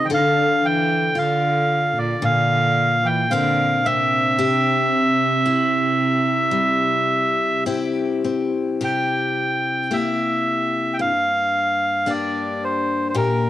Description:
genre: celtic folk, Celtic slow air.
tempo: 55 BPM.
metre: 4/4.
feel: rubato.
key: C mixolydian.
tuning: A4 = 440 Hz.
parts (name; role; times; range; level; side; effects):
melodica; melody; 0.0-13.5 s; Bb4 to G5; -19 LUFS; right 1 dB; cassette tape.
warm cello; second line; 0.0-7.6 s; Bb2 to E3; -24 LUFS; right 5 dB; cassette tape.
picked steel-string acoustic guitar; accompaniment; 0.0-13.5 s; G2 to Bb4; -23 LUFS; left 4 dB; cassette tape.
room: light reverb, small room ambience.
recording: home recording on cassette.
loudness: -17 LUFS.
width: side -13 dB against mid.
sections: 0.0-8.8 A section; 8.8-13.5 B section.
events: none.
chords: 0.1 Dm; 2.2 Bbadd9; 4.4 C; 8.8 C7; 11.0 Gm7.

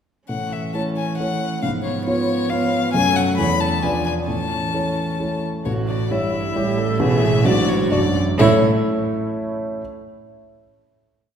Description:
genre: quick classical-period movement for piano quartet.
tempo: 133 BPM.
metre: 3/4.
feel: uneven beats, rubato.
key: A major.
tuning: A4 = 441 Hz.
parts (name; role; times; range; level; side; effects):
rich violin; melody; 0.3-8.6 s; C#5 to B5; -25 LUFS; left 6 dB; none.
dark cello; second line; 0.3-8.6 s; F#2 to F#3; -24 LUFS; right 3 dB; none.
dark concert grand piano; accompaniment; 0.3-9.8 s; A1 to E5; -21 LUFS; equal; none.
dark viola; accompaniment; 0.3-8.6 s; A3 to A4; -26 LUFS; right 2 dB; none.
room: wet concert hall reverb, RT60 1.9 s.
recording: heard from further back in the room.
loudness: -18 LUFS.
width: side -8 dB against mid.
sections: 0.3-5.7 A section; 5.7-8.4 coda; 8.4-9.8 final chord.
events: none.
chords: 0.3 A; 1.6 C#7/G#; 2.9 F#m; 3.4 A/E; 3.8 E7b9; 4.3 A; 5.7 A7; 7.0 D/A; 8.4 A.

